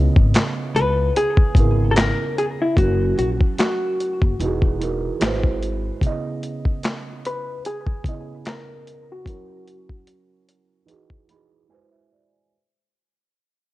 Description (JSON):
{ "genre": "lo-fi hip hop", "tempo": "74 BPM", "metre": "4/4", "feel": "swing 58% on 16ths", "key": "C# dorian", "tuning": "A4 = 441 Hz", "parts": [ { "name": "felt-muted upright piano", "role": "accompaniment", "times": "0.0-12.5 s", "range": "C#3 to B5", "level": "-27 LUFS", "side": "right 5 dB", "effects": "cassette tape, low-pass filter" }, { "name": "upright bass", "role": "bass", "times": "0.0-5.9 s", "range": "E1 to C#2", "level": "-21 LUFS", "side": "equal", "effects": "none" }, { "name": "boom bap sampler-style drum kit", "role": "drums", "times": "0.2-11.5 s", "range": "handclaps, hi-hat, kick drum, snare drum", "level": "-19 LUFS", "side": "left 1 dB", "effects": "vintage 12-bit sampler grit, cassette tape" }, { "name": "vintage hollow-body jazz guitar", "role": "melody", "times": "0.8-12.1 s", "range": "E4 to B4", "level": "-23 LUFS", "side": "left 2 dB", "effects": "low-pass filter, cassette tape" } ], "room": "small room ambience", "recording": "home recording on cassette", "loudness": "-18 LUFS", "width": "side -17 dB against mid", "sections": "0.0-12.5 A section", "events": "fade-out 0.0-12.5; filter sweep 0.0-12.5; break 11.7-12.5", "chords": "0.0 C#m9; 2.8 F#7; 4.4 Emaj9; 5.2 G#7alt; 6.0 C#m9; 9.3 F#7; 10.9 Emaj9; 11.7 G#7alt" }